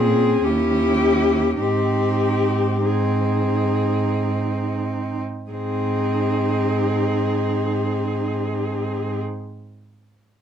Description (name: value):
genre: classical, lyrical piece for cello ensemble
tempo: 43-56 BPM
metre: 3/4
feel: rubato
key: Ab major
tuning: A4 = 440 Hz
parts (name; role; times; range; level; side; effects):
- clear cello; melody; 0.0-9.2 s; G4 to Ab4; -23 LUFS; left 7 dB; none
- rich cello; second line; 0.0-9.2 s; Db4 to Fb4; -28 LUFS; right 11 dB; none
- bright cello; accompaniment; 0.0-9.2 s; C4 to Db4; -26 LUFS; right 1 dB; none
- warm cello; bass; 0.0-9.2 s; Eb2 to Bb2; -24 LUFS; right 2 dB; none
room: light reverb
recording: dark, warm production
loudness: -19 LUFS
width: side -8 dB against mid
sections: 0.0-5.5 A section; 5.5-9.5 B section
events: slowing down 0.0-5.5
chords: 0.4 Eb7b9; 1.6 Ab